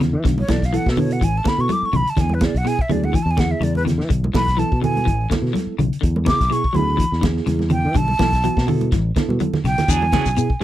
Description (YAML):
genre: afrobeat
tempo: 124 BPM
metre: 4/4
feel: swing 54% on 16ths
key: E mixolydian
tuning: A4 = 440 Hz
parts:
  - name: clean electric guitar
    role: arpeggios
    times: 0.0-10.6 s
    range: B2 to F#3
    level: -25 LUFS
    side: left 6 dB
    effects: ensemble chorus
  - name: fingered electric bass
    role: bass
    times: 0.0-10.6 s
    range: A1 to E3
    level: -21 LUFS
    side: equal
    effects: none
  - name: vintage drum kit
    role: drums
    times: 0.0-10.6 s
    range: hi-hat, kick drum, snare drum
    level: -22 LUFS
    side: equal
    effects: none
  - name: congas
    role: percussion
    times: 0.0-10.5 s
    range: none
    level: -25 LUFS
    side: right 4 dB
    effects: none
  - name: breathy hollow jazz flute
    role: melody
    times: 0.4-10.6 s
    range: A4 to D6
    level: -22 LUFS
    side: right 1 dB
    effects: none
  - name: bright reed electric piano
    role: accompaniment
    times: 0.5-10.6 s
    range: B3 to A4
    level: -26 LUFS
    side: right 10 dB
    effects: overdrive, medium tremolo
  - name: electric guitar at the edge of break-up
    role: stabs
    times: 9.9-10.6 s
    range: F#3 to G#4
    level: -26 LUFS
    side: right 10 dB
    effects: none
  - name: shekere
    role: percussion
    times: 9.9-10.5 s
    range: none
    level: -26 LUFS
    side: left 6 dB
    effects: none
room: little or no reverb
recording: dry, close 1970s-style studio recording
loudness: -16 LUFS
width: side -13 dB against mid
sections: 0.0-10.6 A section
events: flute solo 0.0-10.6; drum fill 8.9-9.9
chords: 0.2 Bm7; 2.2 E13; 4.1 Bm7; 6.0 E13; 8.0 Bm7; 9.9 E13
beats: | 0.25 0.73 1.21 1.69 | 2.18 2.66 3.14 3.62 | 4.10 4.59 5.07 5.55 | 6.03 6.51 7.00 7.48 | 7.96 8.44 8.93 9.41 | 9.89 10.37